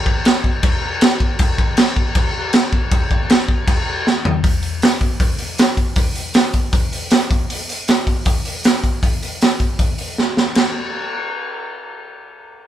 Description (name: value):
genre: punk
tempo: 157 BPM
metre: 4/4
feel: straight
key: none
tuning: none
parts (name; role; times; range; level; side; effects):
- raw garage drum kit; drums; 0.1-10.6 s; crash cymbal, hi-hat, kick drum, snare drum, toms; -15 LUFS; equal; none
room: little or no reverb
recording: band playing live in one room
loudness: -15 LUFS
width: side -11 dB against mid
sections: 0.0-4.4 A section; 4.4-10.5 B section; 10.5-12.7 C section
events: drum fill 4.1-4.4, 10.2-10.5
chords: none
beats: 0.25 0.63 1.01 | 1.39 1.77 2.15 2.53 | 2.91 3.29 3.67 4.05 | 4.43 4.82 5.20 5.58 | 5.96 6.34 6.72 7.11 | 7.49 7.87 8.25 8.63 | 9.02 9.40 9.78 10.16 | 10.54